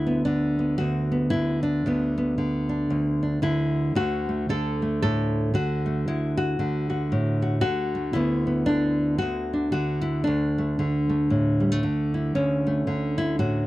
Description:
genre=folk, solo fingerstyle acoustic guitar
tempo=114 BPM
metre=4/4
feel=swing 59% on 8ths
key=D major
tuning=A4 = 440 Hz
part: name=nylon-string guitar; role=solo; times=0.0-13.7 s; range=D2 to A4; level=-22 LUFS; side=equal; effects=none
room=light reverb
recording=dry, close 1970s-style studio recording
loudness=-22 LUFS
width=side -17 dB against mid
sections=0.0-12.3 A section; 12.3-13.7 B section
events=none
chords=0.0 Bm/D; 4.0 D; 8.2 Bm/D; 10.3 D5; 12.3 Dmaj7

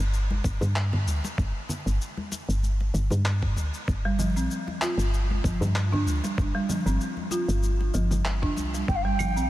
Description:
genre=organic downtempo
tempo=96 BPM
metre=4/4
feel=swing 55% on 16ths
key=G minor pentatonic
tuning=A4 = 442 Hz
part: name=woody FM bass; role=bass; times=0.0-9.5 s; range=G1 to G2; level=-25 LUFS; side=equal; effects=none
part: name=electronic shaker, handclaps and claves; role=drums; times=0.0-9.5 s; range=none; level=-34 LUFS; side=left 1 dB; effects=overdrive
part: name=congas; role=percussion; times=0.3-9.3 s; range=none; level=-36 LUFS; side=left 1 dB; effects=none
part: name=electronic kick drum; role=drums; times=0.4-9.0 s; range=none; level=-29 LUFS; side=equal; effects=overdrive
part: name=folk marimba with medium hard mallets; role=arpeggios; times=4.1-9.5 s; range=F3 to F4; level=-29 LUFS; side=right 1 dB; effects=diffuse ambient delay
part: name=bansuri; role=melody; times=8.9-9.5 s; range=F5 to G5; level=-28 LUFS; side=right 2 dB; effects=none
room=light reverb, small room ambience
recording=none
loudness=-24 LUFS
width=side -15 dB against mid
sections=0.0-9.5 A section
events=none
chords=0.0 N.C.; 3.9 C5/G; 6.4 F5/G; 8.9 Gm7

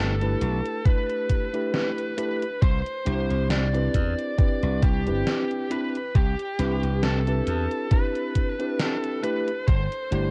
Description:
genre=vaporwave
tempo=68 BPM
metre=4/4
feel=swing 55% on 16ths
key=unclear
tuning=A4 = 442 Hz
part: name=high-gain lead guitar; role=melody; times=0.0-10.3 s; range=G4 to D5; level=-32 LUFS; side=equal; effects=distortion, tape echo
part: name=mellow tine electric piano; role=accompaniment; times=0.0-10.3 s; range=A3 to D5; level=-31 LUFS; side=equal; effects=lush chorus
part: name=glassy slap bass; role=bass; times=0.0-10.3 s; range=G1 to E2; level=-28 LUFS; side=equal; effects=none
part: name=gated 80s digital drum machine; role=drums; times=0.2-10.3 s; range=hi-hat, snare drum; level=-33 LUFS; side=equal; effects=gated reverb, gated reverb snare
part: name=electronic kick drum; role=drums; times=0.9-9.9 s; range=none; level=-24 LUFS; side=equal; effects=none
room=light reverb, digital ambience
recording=cassette tape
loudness=-25 LUFS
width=mono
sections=0.0-10.3 A section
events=none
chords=0.0 G6; 2.6 Cmaj9; 9.2 G6

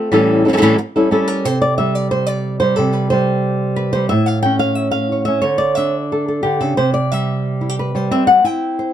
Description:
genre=flamenco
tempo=180 BPM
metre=4/4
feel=straight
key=unclear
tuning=A4 = 437 Hz
part: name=flamenco guitar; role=solo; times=0.0-8.9 s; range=A2 to G5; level=-14 LUFS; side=equal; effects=none
room=light reverb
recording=dark, warm production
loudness=-14 LUFS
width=side -10 dB against mid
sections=0.0-1.5 A section; 1.5-8.9 B section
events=none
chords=0.1 A7; 1.5 C5; 4.1 A; 5.4 D5; 6.8 C

